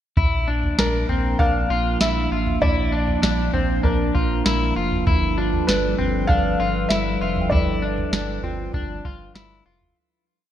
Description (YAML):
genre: dream pop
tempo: 98 BPM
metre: 4/4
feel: straight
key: unclear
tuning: A4 = 440 Hz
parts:
  - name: warbly tape-like pad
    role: sustained chords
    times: 0.2-9.9 s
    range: F3 to B4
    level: -26 LUFS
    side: right 2 dB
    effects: chorus, built-in reverb
  - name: clean electric guitar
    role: arpeggios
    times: 0.2-10.0 s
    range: C4 to F4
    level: -26 LUFS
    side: left 5 dB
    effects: lush chorus, digital delay
  - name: sub bass with octave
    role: bass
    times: 0.2-9.9 s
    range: F1 to Bb1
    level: -26 LUFS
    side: equal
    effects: none
  - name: soft vintage rhythm box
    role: drums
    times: 0.2-10.0 s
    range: kick drum, snare drum, toms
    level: -23 LUFS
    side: right 1 dB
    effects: gated reverb
  - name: felt-muted upright piano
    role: melody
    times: 0.8-9.3 s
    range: Bb4 to F5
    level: -26 LUFS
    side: equal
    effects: digital delay
  - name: soft synth bell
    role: texture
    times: 5.4-10.2 s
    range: F4 to G5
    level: -36 LUFS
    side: right 4 dB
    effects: chorus, digital delay
room: moderate plate reverb, RT60 3.5 s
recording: bright 1980s-style digital production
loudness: -18 LUFS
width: side -11 dB against mid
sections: 0.2-10.0 verse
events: fade-out 7.5-10.0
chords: 0.2 Bb; 5.1 G7